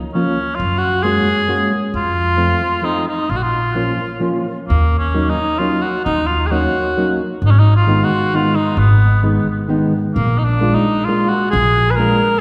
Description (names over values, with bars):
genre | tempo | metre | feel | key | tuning
musette waltz | 133 BPM | 3/4 | rubato | Bb minor, Eb minor from 4.7 s | A4 = 440 Hz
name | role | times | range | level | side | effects
warm cor anglais | melody | 0.1-12.4 s | Bb3 to Cb5 | -20 LUFS | equal | tape echo
hollow-body jazz guitar | accompaniment | 0.1-12.2 s | Eb3 to Gb4 | -22 LUFS | equal | none
upright bass | bass | 0.6-12.1 s | Ab1 to Gb2 | -19 LUFS | equal | none
room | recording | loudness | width
wet concert hall reverb, RT60 2.0 s | heard from further back in the room | -16 LUFS | mono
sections
0.0-4.7 A section; 4.7-12.4 B section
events
none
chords
0.0 Bbm; 0.6 Gbadd9; 1.9 F; 3.3 Bbm; 4.7 Ebm7; 7.4 Abm; 10.2 Bb7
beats
0.15 | 0.60 1.05 1.50 | 1.94 2.39 2.84 | 3.30 3.76 4.23 | 4.70 5.16 5.62 | 6.07 6.53 6.98 | 7.43 7.88 8.33 | 8.78 9.23 9.69 | 10.15 10.61 11.07 | 11.53 11.98